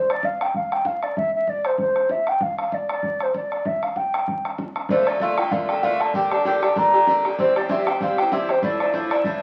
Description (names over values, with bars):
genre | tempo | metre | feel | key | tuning
celtic folk, Celtic reel | 193 BPM | 4/4 | swing 56% on 8ths | unclear | A4 = 440 Hz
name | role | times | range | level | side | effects
mellow hollow baroque flute | melody | 0.0-9.4 s | C5 to Bb5 | -24 LUFS | equal | none
bodhran | percussion | 0.1-9.3 s | none | -31 LUFS | equal | none
Irish bouzouki | accompaniment | 4.9-9.4 s | G2 to G4 | -25 LUFS | equal | none
room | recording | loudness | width
wet studio reverb, RT60 0.7 s | very old 78 rpm record, vinyl crackle | -22 LUFS | mono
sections
0.0-9.4 A section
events
none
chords
0.0 N.C.; 4.9 Bbmaj7; 6.1 Gm; 7.4 C; 8.6 Dmadd9